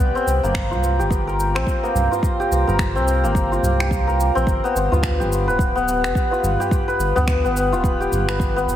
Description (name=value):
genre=organic downtempo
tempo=107 BPM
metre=4/4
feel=swing 60% on 16ths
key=unclear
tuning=A4 = 442 Hz
part: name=santur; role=arpeggios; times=0.0-8.8 s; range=Bb3 to B4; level=-20 LUFS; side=left 1 dB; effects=tape echo, shimmer reverb
part: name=warm sub bass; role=bass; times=0.0-8.8 s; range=D1 to D2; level=-22 LUFS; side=equal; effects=sidechain pumping
part: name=electronic shaker and finger snaps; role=drums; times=0.0-8.8 s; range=none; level=-30 LUFS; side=right 1 dB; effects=small room ambience
part: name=tabla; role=percussion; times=0.3-8.7 s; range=none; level=-29 LUFS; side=right 2 dB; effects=none
part: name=electronic kick drum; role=drums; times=0.5-8.5 s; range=none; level=-22 LUFS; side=equal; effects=small room ambience
room=moderate scoring stage reverb, RT60 1.9 s, digital ambience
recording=heavily compressed radio sound, multiband compression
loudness=-17 LUFS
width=side -11 dB against mid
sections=0.0-8.8 A section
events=none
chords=0.0 C5; 4.5 G7